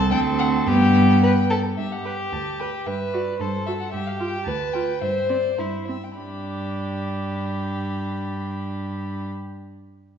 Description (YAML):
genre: quick classical-period movement for string quartet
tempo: 100-113 BPM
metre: 2/4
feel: straight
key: G major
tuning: A4 = 438 Hz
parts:
  - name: warm violin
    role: melody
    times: 0.0-9.3 s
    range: C5 to B5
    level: -31 LUFS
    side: left 5 dB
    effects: none
  - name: rich violin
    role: second line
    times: 0.0-9.3 s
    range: E4 to C5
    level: -27 LUFS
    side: equal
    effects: none
  - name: warm viola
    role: accompaniment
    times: 0.0-9.3 s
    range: B3 to B4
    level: -25 LUFS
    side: equal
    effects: none
  - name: rich cello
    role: bass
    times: 0.0-9.3 s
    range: C2 to G2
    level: -25 LUFS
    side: right 1 dB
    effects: none
room: wet recital hall reverb, RT60 1.5 s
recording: heard from further back in the room, nothing above 7.6 kHz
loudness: -21 LUFS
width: side -8 dB against mid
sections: 0.0-1.8 A section; 1.8-6.2 B section; 6.2-8.5 C section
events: slowing down 3.4-6.2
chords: 0.1 D7(no3); 0.7 G; 2.9 Gmaj13; 3.9 G7; 5.0 C5/G; 6.2 G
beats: 0.12 | 0.67 1.23 | 1.78 2.32 | 2.86 3.40 | 3.93 4.47 | 5.01 5.58 | 6.18 6.76 | 7.34 7.92